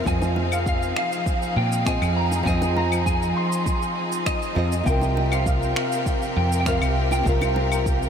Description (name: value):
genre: sunset chillout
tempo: 100 BPM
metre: 4/4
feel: straight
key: F minor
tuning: A4 = 440 Hz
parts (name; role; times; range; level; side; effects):
- nylon-string guitar; accompaniment; 0.0-8.1 s; C3 to Eb5; -28 LUFS; equal; auto-pan, tape echo
- clear symphonic string section; sustained chords; 0.0-8.1 s; C3 to F5; -28 LUFS; left 1 dB; none
- clean electric guitar; melody; 0.1-8.1 s; Eb5 to C6; -27 LUFS; equal; ensemble chorus, tape echo
- woody fretless electric bass; bass; 0.1-8.1 s; C2 to Bb2; -24 LUFS; equal; none
- electronic kick drum; drums; 0.1-8.0 s; none; -26 LUFS; equal; none
- electronic shaker, claves and finger snaps; drums; 0.1-8.1 s; none; -33 LUFS; left 1 dB; none
- bongos; percussion; 0.2-7.7 s; none; -38 LUFS; equal; none
room: moderate huge ambient reverb, RT60 8.0 s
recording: dreamy mix soaked in reverb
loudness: -20 LUFS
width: side -7 dB against mid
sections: 0.0-8.1 A section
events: none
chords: 0.1 Fm7; 4.9 C7sus4